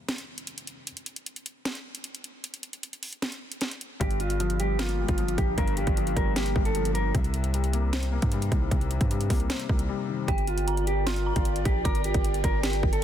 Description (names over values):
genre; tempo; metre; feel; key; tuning
hip hop, trap; 153 BPM; 4/4; half-time; G minor; A4 = 445 Hz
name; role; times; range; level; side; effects
trap drum kit; drums; 0.1-13.0 s; hi-hat, kick drum, snare drum; -29 LUFS; right 1 dB; none
mellow electric guitar; melody; 4.0-7.1, 10.3-13.0 s; F4 to Bb4; -30 LUFS; right 1 dB; low-pass filter, tape echo
felt-muted upright piano; accompaniment; 4.0-10.3 s; G2 to C4; -32 LUFS; left 7 dB; low-pass filter
long sustained 808-style bass; bass; 4.0-13.0 s; G1 to G2; -28 LUFS; right 1 dB; none
dark detuned synth bell; second line; 10.3-12.2 s; G5 to D6; -37 LUFS; right 3 dB; chorus, phaser, tape echo
airy breathy pad; sustained chords; 10.3-13.0 s; F4 to G5; -36 LUFS; equal; chorus
room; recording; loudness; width
little or no reverb; dense, heavily limited modern master; -24 LUFS; side -10 dB against mid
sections
0.0-10.3 A section; 10.3-13.0 B section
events
break 0.0-4.0, 9.9-10.3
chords
0.0 N.C.; 4.0 Gm7; 7.1 Cm7; 10.3 Gm7